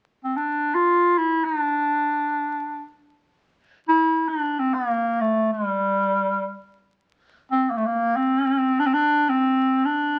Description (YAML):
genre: Turkish makam ensemble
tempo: free time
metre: none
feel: none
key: D makam ussak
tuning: A4 = 441 Hz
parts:
  - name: clear clarinet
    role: solo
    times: 0.2-10.2 s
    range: G3 to F4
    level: -22 LUFS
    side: equal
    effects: none
room: moderate studio reverb, RT60 0.9 s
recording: very old 78 rpm record, vinyl crackle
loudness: -22 LUFS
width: mono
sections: 0.0-10.2 A section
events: none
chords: none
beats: free time